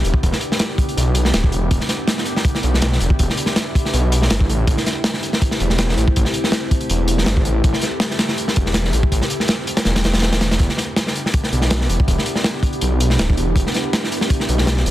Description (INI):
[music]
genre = drum and bass, jungle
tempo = 162 BPM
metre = 4/4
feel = swing 54% on 16ths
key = E minor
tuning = A4 = 440 Hz
[part]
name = warbly tape-like pad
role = sustained chords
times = 0.0-14.9 s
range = A3 to G4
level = -25 LUFS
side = equal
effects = chorus, built-in reverb, phaser, vintage 12-bit sampler grit
[part]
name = detuned saw bass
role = bass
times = 0.0-14.9 s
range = D1 to B1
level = -18 LUFS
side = equal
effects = none
[part]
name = crunchy breakbeat drum kit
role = drums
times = 0.0-14.9 s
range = hi-hat, kick drum, snare drum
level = -18 LUFS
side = equal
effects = none
[sound]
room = light reverb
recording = dense, heavily limited modern master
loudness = -16 LUFS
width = side -14 dB against mid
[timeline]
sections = 0.0-14.9 A section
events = none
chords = 0.0 Em7; 4.7 Am7; 10.6 Em7